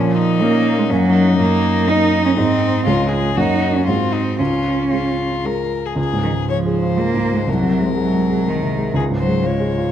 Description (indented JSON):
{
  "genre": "quick classical-period movement for piano trio",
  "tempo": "121 BPM",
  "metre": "3/4",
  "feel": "rubato",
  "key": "Db major",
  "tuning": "A4 = 440 Hz",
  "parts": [
    { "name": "warm violin", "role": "melody", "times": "0.0-9.9 s", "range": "Db4 to Db5", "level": "-22 LUFS", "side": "left 7 dB", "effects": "none" },
    { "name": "warm cello", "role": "second line", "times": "0.0-9.9 s", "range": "Eb3 to Eb4", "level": "-19 LUFS", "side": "right 2 dB", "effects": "none" },
    { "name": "dark baby grand piano", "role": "accompaniment", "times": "0.0-9.9 s", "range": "C2 to Eb5", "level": "-18 LUFS", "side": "right 1 dB", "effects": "none" }
  ],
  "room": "moderate scoring stage reverb, RT60 1.9 s",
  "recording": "dark, warm production",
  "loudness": "-15 LUFS",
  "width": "side -10 dB against mid",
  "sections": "0.0-6.0 A section; 6.0-9.9 B section",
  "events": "none",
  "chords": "0.0 Bbm; 0.9 Gb; 1.4 Ebm/Gb; 2.4 Ab; 2.9 Db; 3.4 Gb; 3.9 Ab7; 4.4 Db; 7.5 Ab/C; 8.9 Db",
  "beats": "0.41 0.90 | 1.39 1.87 2.37 | 2.87 3.37 3.87 | 4.39 4.92 5.45 | 5.98 6.48 6.98 | 7.47 7.97 8.46 | 8.95 9.44"
}